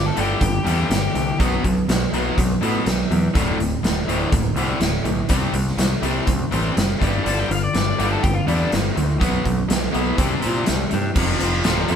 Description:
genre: classic rock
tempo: 123 BPM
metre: 4/4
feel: straight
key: unclear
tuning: A4 = 440 Hz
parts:
  - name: octave-fuzz lead guitar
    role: second line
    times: 0.0-1.4, 7.3-8.7 s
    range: D4 to A5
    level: -26 LUFS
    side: left 4 dB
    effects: distortion
  - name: cranked stack guitar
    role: riff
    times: 0.0-12.0 s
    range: D2 to C4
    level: -25 LUFS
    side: right 6 dB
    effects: overdrive
  - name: distorted electric guitar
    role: riff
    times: 0.0-12.0 s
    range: D2 to C4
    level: -25 LUFS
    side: left 5 dB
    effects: overdrive
  - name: growling picked electric bass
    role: bass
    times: 0.0-12.0 s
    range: D1 to Bb2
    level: -24 LUFS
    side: equal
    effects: overdrive
  - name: big rock drum kit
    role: drums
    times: 0.2-12.0 s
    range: crash cymbal, hi-hat, kick drum, snare drum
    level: -22 LUFS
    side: equal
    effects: none
room: moderate stone room reverb, RT60 1.0 s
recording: band playing live in one room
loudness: -18 LUFS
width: side -8 dB against mid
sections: 0.0-11.2 A section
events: none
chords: 0.0 G5; 1.4 B5; 3.3 D5; 5.3 C5; 7.0 G5; 9.2 B5; 10.2 C5; 11.2 F5

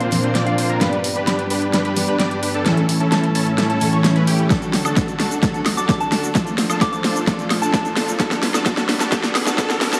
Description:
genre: EDM, festival progressive house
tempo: 130 BPM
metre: 4/4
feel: straight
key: unclear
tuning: A4 = 439 Hz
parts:
  - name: soft synth bell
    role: melody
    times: 0.0-0.8, 5.8-7.8 s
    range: F5 to D6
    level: -30 LUFS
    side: equal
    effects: chorus, phaser, dub echo
  - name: picked steel-string acoustic guitar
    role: accompaniment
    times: 0.0-10.0 s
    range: G2 to B4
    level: -26 LUFS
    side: equal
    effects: sidechain pumping
  - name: lush unison pad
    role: sustained chords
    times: 0.0-10.0 s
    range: D2 to C5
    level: -31 LUFS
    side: equal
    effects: chorus, sidechain pumping
  - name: plucky unison lead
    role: arpeggios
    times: 0.0-10.0 s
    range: G5 to D6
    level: -31 LUFS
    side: equal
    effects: ensemble chorus, sidechain pumping, dub echo
  - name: supersaw chords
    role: riff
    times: 0.0-10.0 s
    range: Bb3 to D5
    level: -26 LUFS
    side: equal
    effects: sidechain pumping, low-pass filter, dub echo
  - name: big-room dance drum kit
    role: drums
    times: 0.0-10.0 s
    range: hi-hat, shaker, snare drum, woodblock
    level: -23 LUFS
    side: equal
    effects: overdrive
  - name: electronic kick drum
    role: drums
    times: 4.5-9.7 s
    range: none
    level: -25 LUFS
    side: equal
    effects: overdrive
  - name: riser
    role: sound effects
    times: 6.3-10.0 s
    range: none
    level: -33 LUFS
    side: equal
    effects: none
room: wet scoring stage reverb, RT60 1.6 s, digital ambience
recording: dark, warm production, high-pass filter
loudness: -19 LUFS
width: mono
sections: 0.0-10.0 A section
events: build-up 0.0-10.0; drum fill 0.0-10.0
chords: 0.0 Bbadd9; 0.8 G; 2.7 A; 4.5 D; 6.4 Bbadd9; 8.2 G

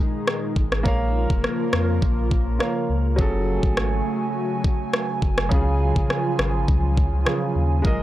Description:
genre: dancehall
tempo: 103 BPM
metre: 4/4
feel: straight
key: Db major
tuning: A4 = 439 Hz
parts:
  - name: warm grand piano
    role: accompaniment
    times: 0.0-8.0 s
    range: Db3 to F5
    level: -28 LUFS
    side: right 1 dB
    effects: sidechain pumping
  - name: airy breathy pad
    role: sustained chords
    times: 0.0-8.0 s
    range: Bb2 to Ab5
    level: -26 LUFS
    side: equal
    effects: chorus, sidechain pumping
  - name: afro-pop drum kit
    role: drums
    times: 0.3-8.0 s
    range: kick drum, rim click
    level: -22 LUFS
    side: equal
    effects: none
  - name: sub bass with octave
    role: bass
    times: 0.6-8.0 s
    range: F1 to F2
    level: -23 LUFS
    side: equal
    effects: none
room: digital ambience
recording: dry, gritty hardware recording, transformer saturation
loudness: -19 LUFS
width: side -14 dB against mid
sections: 0.0-8.0 A section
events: none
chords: 0.0 Absus2; 0.9 Bbm; 3.2 Gbmadd9; 5.5 Db

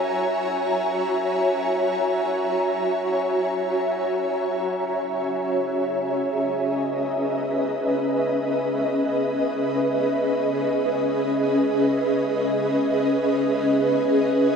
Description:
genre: ambient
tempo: free time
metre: none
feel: none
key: C# dorian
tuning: A4 = 441 Hz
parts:
  - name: ethereal airy pad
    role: solo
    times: 0.0-14.6 s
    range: C#4 to A#5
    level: -20 LUFS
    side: equal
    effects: ensemble chorus, built-in reverb, tremolo, tape echo
room: wet cathedral reverb, RT60 4.9 s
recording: none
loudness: -20 LUFS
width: side -6 dB against mid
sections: 0.0-4.6 A section; 4.6-14.6 B section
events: none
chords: 0.0 F#7; 4.6 C#m7

